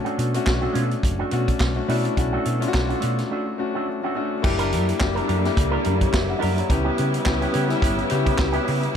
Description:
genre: disco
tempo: 106 BPM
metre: 4/4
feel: swing 56% on 16ths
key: B minor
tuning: A4 = 436 Hz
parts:
  - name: clear concert grand piano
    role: accompaniment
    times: 0.0-9.0 s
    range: A3 to F#5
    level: -25 LUFS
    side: left 5 dB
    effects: none
  - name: electric guitar with an envelope filter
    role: accompaniment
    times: 0.0-9.0 s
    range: A3 to A#4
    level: -29 LUFS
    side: right 5 dB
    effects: none
  - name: vintage drum kit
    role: drums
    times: 0.1-8.9 s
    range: crash cymbal, handclaps, hi-hat, kick drum, snare drum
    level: -25 LUFS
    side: right 1 dB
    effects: none
  - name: hollow-body short-scale fingered electric bass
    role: bass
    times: 0.2-8.9 s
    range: F#1 to C#3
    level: -25 LUFS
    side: equal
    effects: none
  - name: clear studio string section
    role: sustained chords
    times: 4.4-9.0 s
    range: C#3 to E4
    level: -28 LUFS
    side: right 2 dB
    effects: none
room: light reverb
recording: none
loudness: -20 LUFS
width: side -8 dB against mid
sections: 0.0-4.4 A section; 4.4-9.0 B section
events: break 3.3-4.4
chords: 0.0 Bm7; 4.4 F#7b9b13; 6.7 C#m7b5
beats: 0.47 1.03 1.60 | 2.17 2.74 3.31 3.87 | 4.44 5.00 5.57 6.13 | 6.70 7.26 7.83 8.39 | 8.96

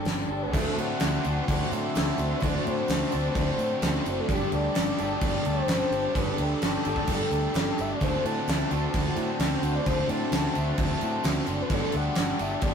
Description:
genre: rock, shoegaze and dream pop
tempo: 129 BPM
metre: 4/4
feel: straight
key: D mixolydian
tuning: A4 = 439 Hz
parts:
  - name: breathy flute-like synth lead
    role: melody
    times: 0.0-12.7 s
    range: G4 to A5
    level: -32 LUFS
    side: left 1 dB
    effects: chorus, analog delay
  - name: evolving wavetable pad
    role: sustained chords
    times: 0.0-12.7 s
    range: F#4 to A5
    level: -37 LUFS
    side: equal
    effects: phaser, built-in reverb
  - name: clean electric guitar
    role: riff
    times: 0.0-12.7 s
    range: D3 to A4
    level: -34 LUFS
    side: right 2 dB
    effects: none
  - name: overdriven electric guitar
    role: riff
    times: 0.0-12.7 s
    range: D3 to D5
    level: -33 LUFS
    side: left 6 dB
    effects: none
  - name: growling fingered electric bass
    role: bass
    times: 0.1-12.7 s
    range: F#1 to A2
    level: -30 LUFS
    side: equal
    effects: overdrive
  - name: gated 80s drum kit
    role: drums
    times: 0.1-12.7 s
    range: crash cymbal, hi-hat, kick drum, snare drum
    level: -29 LUFS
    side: right 1 dB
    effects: none
  - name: distorted electric guitar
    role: riff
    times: 0.5-12.7 s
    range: G2 to D4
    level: -36 LUFS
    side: right 2 dB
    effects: overdrive
  - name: tambourine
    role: percussion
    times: 0.5-12.7 s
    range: none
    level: -50 LUFS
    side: right 8 dB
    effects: none
room: moderate studio reverb, RT60 0.6 s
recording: rough rehearsal-room recording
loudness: -24 LUFS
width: side -7 dB against mid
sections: 0.5-12.7 A section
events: none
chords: 0.0 Gsus2; 0.5 D7; 4.3 Gsus2; 8.0 D7; 11.7 Gsus2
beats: 0.06 | 0.53 1.00 1.47 1.94 | 2.41 2.88 3.35 3.82 | 4.29 4.75 5.22 5.69 | 6.15 6.62 7.08 7.55 | 8.01 8.48 8.94 9.40 | 9.86 10.32 10.79 11.25 | 11.71 12.17 12.63

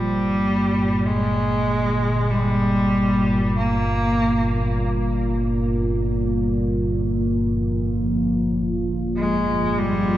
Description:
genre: dark ambient drone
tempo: 48 BPM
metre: 4/4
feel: straight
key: unclear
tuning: A4 = 441 Hz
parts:
  - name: bright cello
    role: melody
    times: 0.0-10.2 s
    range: G3 to Bb3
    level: -22 LUFS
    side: equal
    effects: diffuse ambient delay
  - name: analog drone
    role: drone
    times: 0.0-10.2 s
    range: G1 to Bb2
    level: -21 LUFS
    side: equal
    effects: chorus
  - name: dark analog pad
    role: sustained chords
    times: 7.3-10.2 s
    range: F3 to C5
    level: -26 LUFS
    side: right 1 dB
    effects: chorus
room: wet cathedral reverb, RT60 5.1 s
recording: worn, warbling old tape, cassette tape, warbly pitch drift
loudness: -19 LUFS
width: side -13 dB against mid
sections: 0.0-10.2 A section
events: none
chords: 0.0 Gm; 7.3 Fm/G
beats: 1.06 | 2.31 3.56 4.81 6.06 | 7.31 8.56 9.81

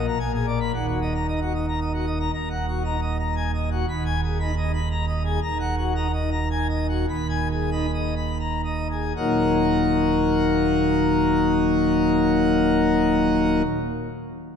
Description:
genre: classical, organ toccata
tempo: 76-118 BPM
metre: 3/4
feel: straight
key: Eb minor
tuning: A4 = 440 Hz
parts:
  - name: pipe organ, plenum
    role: solo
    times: 0.0-13.6 s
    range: Eb1 to Cb6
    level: -20 LUFS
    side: equal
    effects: none
room: wet church reverb, RT60 2.8 s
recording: dark, warm production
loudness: -20 LUFS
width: side -7 dB against mid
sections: 0.0-2.3 A section; 2.3-9.2 B section; 9.2-13.9 C section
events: slowing down 4.6-9.2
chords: 0.2 Bb7b9; 0.7 Ebm; 3.9 Abm/Eb; 5.4 Ebm; 7.1 Abm/Eb; 9.2 Ebm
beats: 0.20 | 0.74 1.27 1.80 | 2.33 2.85 3.37 | 3.88 4.39 4.90 | 5.42 5.95 6.50 | 7.09 7.72 8.40 | 9.17 9.95 10.74 | 11.52 12.31 13.10

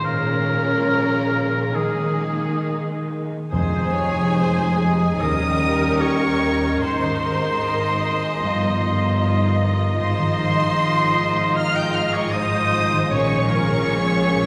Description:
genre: cinematic, emotional film score for orchestra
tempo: 65-79 BPM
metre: 4/4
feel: rubato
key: F minor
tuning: A4 = 440 Hz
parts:
  - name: rich symphonic violin section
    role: melody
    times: 0.0-14.5 s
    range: Eb4 to G6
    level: -30 LUFS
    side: equal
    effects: none
  - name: clear oboe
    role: second line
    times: 0.0-14.5 s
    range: Ab4 to G5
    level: -28 LUFS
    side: equal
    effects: none
  - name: warm symphonic violin section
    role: second line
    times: 0.0-14.5 s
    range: Db4 to Bb4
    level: -31 LUFS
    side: equal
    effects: none
  - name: clear symphonic viola section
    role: accompaniment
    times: 0.0-14.5 s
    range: Ab3 to Eb5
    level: -29 LUFS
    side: equal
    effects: none
  - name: mellow French horn section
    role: sustained chords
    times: 0.0-14.5 s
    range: Db3 to Eb4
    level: -30 LUFS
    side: equal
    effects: none
  - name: concert harp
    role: arpeggios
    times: 0.0-14.5 s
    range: G2 to Bb5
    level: -30 LUFS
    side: equal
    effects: none
  - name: rich studio cello section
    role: bass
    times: 0.0-14.5 s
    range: Eb2 to Eb3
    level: -28 LUFS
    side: equal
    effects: none
  - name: rich symphonic double bass section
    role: bass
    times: 3.5-14.5 s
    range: F1 to Eb2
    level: -29 LUFS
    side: equal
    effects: none
  - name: timpani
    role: percussion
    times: 3.5-4.7 s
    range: F2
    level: -29 LUFS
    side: equal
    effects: none
room: wet church reverb, RT60 2.9 s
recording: recorded in a church or concert hall, small room ambience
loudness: -20 LUFS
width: mono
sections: 0.0-3.5 A section; 3.5-14.5 A section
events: none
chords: 0.0 Bbm7; 1.7 Ebsus4; 3.5 Fm7; 5.2 Eb7; 6.8 Abadd9; 8.4 Ebadd9/G; 10.0 Fm7/Ab; 13.1 Bbm7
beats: | 0.04 0.86 1.75 2.65 | 3.52 4.35 5.21 6.02 | 6.81 7.63 8.42 9.21 | 9.99 10.77 11.56 12.33 | 13.11 13.90

